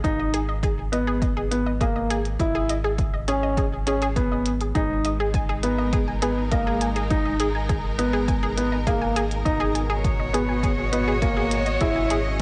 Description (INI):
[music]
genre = piano and strings electronica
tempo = 102 BPM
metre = 4/4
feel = straight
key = G# minor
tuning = A4 = 438 Hz
[part]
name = clear upright piano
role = riff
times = 0.0-12.2 s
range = A#3 to E4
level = -28 LUFS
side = equal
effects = tape echo
[part]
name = round analog bass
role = bass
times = 0.0-12.4 s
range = G#1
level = -30 LUFS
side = equal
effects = sidechain pumping
[part]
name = electronic hi-hat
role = drums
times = 0.0-12.4 s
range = none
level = -37 LUFS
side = equal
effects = none
[part]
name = electronic kick drum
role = drums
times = 0.0-12.4 s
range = none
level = -28 LUFS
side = equal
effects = overdrive
[part]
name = analog pluck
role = arpeggios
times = 0.2-12.2 s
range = G#4 to G#5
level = -32 LUFS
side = equal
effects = chorus, sidechain pumping, tape echo
[part]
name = rich studio string section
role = sustained chords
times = 4.8-12.4 s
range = B2 to D#5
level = -32 LUFS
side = equal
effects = none
[sound]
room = light reverb, digital ambience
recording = nothing above 10.3 kHz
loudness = -23 LUFS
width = mono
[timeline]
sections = 0.0-12.4 A section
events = none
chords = 0.0 G#madd9; 2.4 C#m7/G#; 4.8 G#madd9; 9.5 B/G#; 11.8 C#m7/G#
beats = | 0.05 0.63 1.22 1.81 | 2.40 2.99 3.58 4.16 | 4.75 5.34 5.93 6.52 | 7.11 7.69 8.28 8.87 | 9.46 10.05 10.63 11.22 | 11.81 12.40